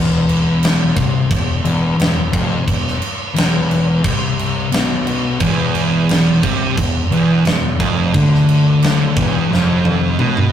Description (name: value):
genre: stoner and doom metal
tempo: 88 BPM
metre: 4/4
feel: straight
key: unclear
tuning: A4 = 441 Hz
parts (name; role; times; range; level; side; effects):
- thick fuzz guitar; riff; 0.0-10.5 s; E2 to D3; -16 LUFS; left 3 dB; distortion
- growling fingered electric bass; bass; 0.0-10.5 s; E1 to D2; -23 LUFS; equal; overdrive
- big rock drum kit; drums; 0.3-10.5 s; crash cymbal, kick drum, snare drum, toms; -18 LUFS; equal; none
- thick fuzz guitar; riff; 5.4-10.5 s; E2 to D3; -17 LUFS; right 6 dB; distortion
room: moderate booth ambience, RT60 0.2 s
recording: rough rehearsal-room recording, tube saturation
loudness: -13 LUFS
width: side -9 dB against mid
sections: 0.0-10.5 A section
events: drum fill 9.5-10.5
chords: 0.0 E5